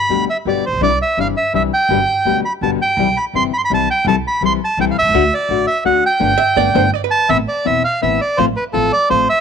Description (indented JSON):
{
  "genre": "tango",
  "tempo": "167 BPM",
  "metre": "3/4",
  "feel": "rubato",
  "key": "unclear",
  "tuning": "A4 = 436 Hz",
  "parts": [
    { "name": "bandoneon", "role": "melody", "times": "0.0-9.4 s", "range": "A4 to C6", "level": "-15 LUFS", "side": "right 2 dB", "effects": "none" },
    { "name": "nylon-string guitar", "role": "accompaniment", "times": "0.1-9.3 s", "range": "B2 to A4", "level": "-19 LUFS", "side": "left 12 dB", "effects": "none" },
    { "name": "upright bass", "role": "bass", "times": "0.1-9.3 s", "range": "E1 to D2", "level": "-23 LUFS", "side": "right 3 dB", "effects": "none" },
    { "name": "archtop guitar, miked and amplified", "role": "second line", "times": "6.4-7.3 s", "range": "B4 to E5", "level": "-19 LUFS", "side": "right 17 dB", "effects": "none" }
  ],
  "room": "small room ambience",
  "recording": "1960s-style stereo with parts hard left and right",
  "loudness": "-13 LUFS",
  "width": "side -7 dB against mid",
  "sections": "0.0-7.3 A section; 7.3-9.4 B section",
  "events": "band accent 6.2-7.3",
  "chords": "0.0 G; 0.8 Cadd9; 1.9 G; 3.0 C; 4.1 Am7/C; 5.1 D; 6.2 Gadd9; 7.3 Amadd9; 8.4 F/A"
}